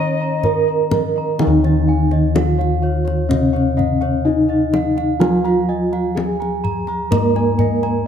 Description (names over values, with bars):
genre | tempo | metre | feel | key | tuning
Javanese gamelan | 63 BPM | 4/4 | straight | Eb slendro | A4 = 439 Hz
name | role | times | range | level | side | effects
gamelan-type bronze metallophone | melody | 0.0-8.1 s | Db4-40c to Db5-40c | -19 LUFS | right 1 dB | none
alto recorder | second line | 0.0-0.7 s | Eb5 | -26 LUFS | left 3 dB | none
gamelan-type bronze metallophone | accompaniment | 0.0-8.1 s | Db3-40c to Db4-40c | -22 LUFS | right 2 dB | none
gamelan-type bossed gongs | arpeggios | 0.0-8.1 s | Db5-40c to Bb5+20c | -28 LUFS | left 4 dB | none
gamelan-type bronze metallophone | arpeggios | 0.0-8.1 s | Db5-40c to Bb5+20c | -27 LUFS | right 6 dB | none
gamelan-type bossed gongs | bass | 0.0-8.1 s | Eb2 to F4+40c | -21 LUFS | left 4 dB | none
kendang | percussion | 0.4-8.0 s | none | -25 LUFS | left 2 dB | none
room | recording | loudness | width
moderate concert hall reverb, RT60 1.7 s | close, detailed microphones | -15 LUFS | side -8 dB against mid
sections
0.0-1.4 A section; 1.4-8.1 B section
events
none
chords
none